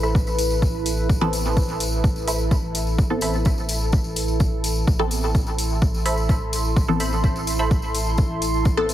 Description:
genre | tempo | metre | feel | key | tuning
dub techno | 127 BPM | 4/4 | straight | A minor | A4 = 440 Hz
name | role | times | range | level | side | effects
deep dark ambient pad | sustained chords | 0.0-8.9 s | E4 to C6 | -27 LUFS | right 1 dB | chorus, built-in reverb, sidechain pumping
filtered dub chord stab | riff | 0.0-7.7 s | A4 to B5 | -30 LUFS | right 2 dB | chorus, cassette tape, sidechain pumping, dub echo
warm sub bass | bass | 0.0-8.9 s | A1 | -26 LUFS | equal | sidechain pumping
tambourine | percussion | 0.0-8.9 s | none | -32 LUFS | left 2 dB | none
electronic kick drum | drums | 0.1-8.8 s | none | -22 LUFS | equal | overdrive, small room ambience
electronic hi-hat | drums | 0.4-8.9 s | none | -30 LUFS | left 2 dB | overdrive, small room ambience
filtered dub chord stab | stabs | 1.2-8.9 s | E3 to A4 | -26 LUFS | equal | phaser, sidechain pumping, dub echo
room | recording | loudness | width
light reverb | heavily compressed radio sound | -19 LUFS | side -12 dB against mid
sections
0.0-8.9 A section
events
none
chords
0.0 Amadd9

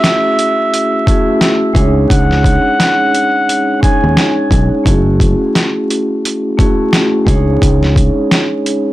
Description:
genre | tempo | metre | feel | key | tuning
hip hop, boom-bap hip-hop | 87 BPM | 4/4 | swing 59% on 16ths | C# minor | A4 = 440 Hz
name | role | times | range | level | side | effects
trumpet with cup mute | melody | 0.0-4.3 s | E5 to G#5 | -15 LUFS | equal | high-pass filter, low-pass filter, plate reverb, digital delay
vibraphone with soft mallets | accompaniment | 0.0-8.9 s | G#3 to C#5 | -14 LUFS | equal | high-pass filter, low-pass filter, plate reverb
boom bap sampler-style drum kit | drums | 0.0-8.8 s | hi-hat, kick drum, snare drum | -13 LUFS | equal | overdrive
fingered electric bass | bass | 1.8-8.1 s | F#1 to D#2 | -13 LUFS | equal | transformer saturation
room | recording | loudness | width
light reverb | blown-out, overdriven recording, vinyl crackle, overdrive | -10 LUFS | side -16 dB against mid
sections
0.0-8.9 A section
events
none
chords
0.0 F#m7; 1.8 C#sus2; 4.9 F#m7; 7.3 C#sus2

